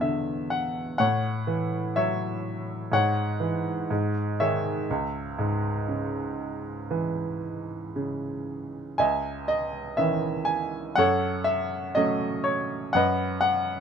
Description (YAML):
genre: classical, lyrical solo piano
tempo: 61 BPM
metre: 4/4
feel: rubato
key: C# minor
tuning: A4 = 441 Hz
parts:
  - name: clear baby grand piano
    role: solo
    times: 0.0-13.8 s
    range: C#2 to G#5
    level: -25 LUFS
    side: equal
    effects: none
room: light reverb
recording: none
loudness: -25 LUFS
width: side -7 dB against mid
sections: 0.0-9.0 A section; 9.0-13.8 B section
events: grand piano fill 0.0-1.0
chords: 0.0 E7; 1.0 A6; 2.9 C#m/G#; 3.9 G#5; 4.9 C#m; 9.0 C#madd9; 11.0 F#m; 13.0 B/F#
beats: 0.04 | 1.00 1.96 2.92 3.90 | 4.88 5.89 6.91 7.96 | 9.00 9.99 10.99 11.98 | 12.95